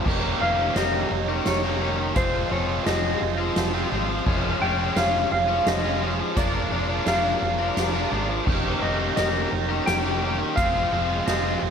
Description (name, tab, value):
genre	post-rock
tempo	86 BPM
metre	3/4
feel	straight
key	unclear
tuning	A4 = 435 Hz
part	clear studio string section	sustained chords	0.0-11.7 s	G4 to C6	-36 LUFS	left 1 dB	none
part	crunchy overdriven guitar	riff	0.0-11.7 s	Eb3 to Bb4	-29 LUFS	left 10 dB	slapback echo
part	tight distorted guitar	riff	0.0-11.7 s	Eb3 to G4	-28 LUFS	right 12 dB	distortion
part	hollow-body short-scale fingered electric bass	bass	0.1-11.7 s	F1 to Ab1	-29 LUFS	equal	none
part	soft-mallet drum kit	drums	0.1-11.4 s	crash cymbal, hi-hat, kick drum, snare drum	-28 LUFS	right 1 dB	none
part	clean lap steel guitar	melody	0.4-11.7 s	C5 to G5	-26 LUFS	left 2 dB	slapback echo, analog delay
room	moderate lush hall reverb, RT60 2.6 s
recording	big arena sound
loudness	-21 LUFS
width	side -7 dB against mid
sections	0.1-11.7 A section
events	none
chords	0.1 Eb7/F; 2.2 Fm7; 4.3 Dbmaj7/F; 6.4 Bb7/F; 8.5 Eb7/F; 10.6 Fm7